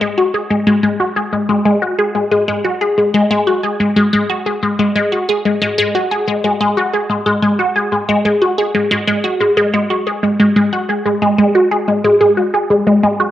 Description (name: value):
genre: ambient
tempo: 91 BPM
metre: 4/4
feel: straight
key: unclear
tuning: A4 = 440 Hz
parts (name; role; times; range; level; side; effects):
- resonant blip pluck; solo; 0.0-13.3 s; G#3 to G#4; -12 LUFS; left 1 dB; phaser, cassette tape, ping-pong delay
room: wet spring reverb, RT60 1.3 s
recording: home recording on cassette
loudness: -12 LUFS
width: side -12 dB against mid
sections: 0.0-9.4 A section; 9.4-13.3 B section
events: none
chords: none